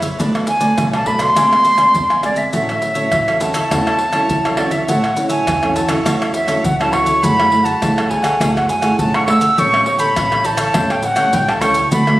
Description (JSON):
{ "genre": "samba and choro", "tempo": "102 BPM", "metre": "4/4", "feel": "straight", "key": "A major, F# minor from 7.2 s", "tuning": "A4 = 440 Hz", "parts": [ { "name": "cavaquinho", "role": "accompaniment", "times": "0.0-12.2 s", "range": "D4 to Ab5", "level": "-24 LUFS", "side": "right 2 dB", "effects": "none" }, { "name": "nylon-string guitar", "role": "accompaniment", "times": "0.0-12.2 s", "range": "F#2 to G#4", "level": "-20 LUFS", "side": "equal", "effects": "none" }, { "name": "upright bass", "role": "bass", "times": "0.0-12.2 s", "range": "A1 to F#2", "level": "-25 LUFS", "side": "equal", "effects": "none" }, { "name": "maracas, pandeiro, surdo and tamborim", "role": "percussion", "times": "0.0-12.2 s", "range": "none", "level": "-21 LUFS", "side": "equal", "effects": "none" }, { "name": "breathy silver concert flute", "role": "melody", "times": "0.5-12.2 s", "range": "D5 to E6", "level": "-15 LUFS", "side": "equal", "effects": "plate reverb" } ], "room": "moderate large studio reverb, RT60 0.9 s", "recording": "recorded on a phone in the room, studio reverb, compression", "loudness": "-13 LUFS", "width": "side -16 dB against mid", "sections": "0.0-7.2 A section; 7.2-12.2 B section", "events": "none", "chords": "0.2 Bm7; 1.4 Bb9; 2.5 A6; 7.2 F#m9; 9.6 A9" }